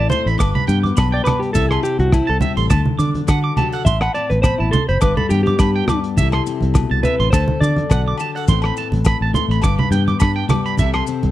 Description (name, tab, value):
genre	highlife guitar band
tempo	104 BPM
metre	4/4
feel	swing 54% on 16ths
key	G major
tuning	A4 = 441 Hz
part	clean electric guitar	melody	0.0-8.1 s	E4 to F#5	-21 LUFS	equal	none
part	picked steel-string acoustic guitar	accompaniment	0.0-11.3 s	G2 to B4	-24 LUFS	left 8 dB	none
part	electric guitar at the edge of break-up	arpeggios	0.0-11.0 s	E5 to D6	-24 LUFS	right 7 dB	slapback echo
part	fingered electric bass	bass	0.0-11.3 s	F#1 to D3	-18 LUFS	equal	none
part	cloth-damped thuddy drum kit	drums	0.1-11.3 s	hi-hat, kick drum, rim click	-17 LUFS	equal	none
part	congas	percussion	0.1-11.3 s	none	-22 LUFS	right 2 dB	none
part	maracas	percussion	0.1-11.2 s	none	-34 LUFS	left 9 dB	none
part	agogo bells	percussion	0.4-11.1 s	none	-30 LUFS	left 6 dB	none
room	studio reverb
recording	dry, close 1970s-style studio recording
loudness	-15 LUFS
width	side -14 dB against mid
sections	0.0-11.3 A section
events	clean electric guitar solo 0.0-11.3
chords	0.4 G; 1.5 C6; 2.7 D; 3.9 Amadd9; 5.0 G; 6.2 C6; 7.3 D; 8.5 Amadd9; 9.6 G; 10.8 C6